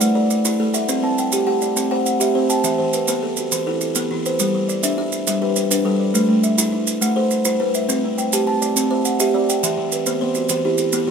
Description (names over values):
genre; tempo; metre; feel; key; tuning
southern african traditional, mbira-style interlocking cycle; 137 BPM (dotted quarters); 12/8; straight; G major; A4 = 438 Hz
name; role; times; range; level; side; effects
buzzing kalimba; arpeggios; 0.0-11.1 s; E3 to A5; -19 LUFS; equal; none
buzzing kalimba; arpeggios; 0.0-11.1 s; E3 to A5; -23 LUFS; right 2 dB; none
maracas; percussion; 0.0-11.1 s; none; -22 LUFS; right 5 dB; none
room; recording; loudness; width
light reverb; minimal, uncompressed stereo recording; -17 LUFS; side -6 dB against mid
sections
0.0-4.4 A section; 4.4-11.1 B section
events
none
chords
0.0 A5; 0.9 C; 2.6 Em; 4.4 G; 6.1 Am; 7.9 C; 9.6 Em